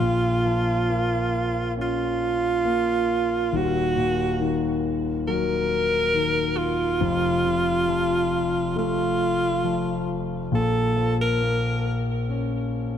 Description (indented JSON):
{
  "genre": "pop",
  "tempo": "68 BPM",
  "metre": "4/4",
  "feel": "straight",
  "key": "Bb harmonic minor",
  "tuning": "A4 = 440 Hz",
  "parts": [
    { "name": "bright alto saxophone", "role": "melody", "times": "0.0-12.0 s", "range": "F4 to Bb4", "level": "-24 LUFS", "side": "right 2 dB", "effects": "none" },
    { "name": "dark concert grand piano", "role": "accompaniment", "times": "0.0-13.0 s", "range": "Eb1 to Db4", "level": "-25 LUFS", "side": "left 2 dB", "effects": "none" }
  ],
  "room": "moderate plate reverb, RT60 3.2 s",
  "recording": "dark, warm production",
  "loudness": "-21 LUFS",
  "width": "side -9 dB against mid",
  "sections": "0.0-13.0 A section",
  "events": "grand piano fill 12.7",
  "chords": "0.0 Bbm; 3.5 Ebm; 7.0 F; 10.5 Bbm"
}